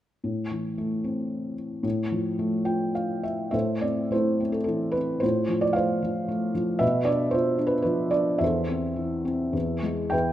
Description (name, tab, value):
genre	classical, lyrical solo piano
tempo	102-117 BPM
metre	3/4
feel	rubato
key	A minor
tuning	A4 = 441 Hz
part	felt-muted upright piano	solo	0.2-10.3 s	E2 to G5	-24 LUFS	equal	none
room	light reverb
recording	dark, warm production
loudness	-24 LUFS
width	side -12 dB against mid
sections	0.2-3.5 A section; 3.5-10.3 B section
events	felt piano fill 2.4-3.5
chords	0.2 Am; 1.8 Fmaj9/A; 3.5 Am; 5.2 Dm7/A; 6.8 Bdim; 8.4 Am/E; 9.6 E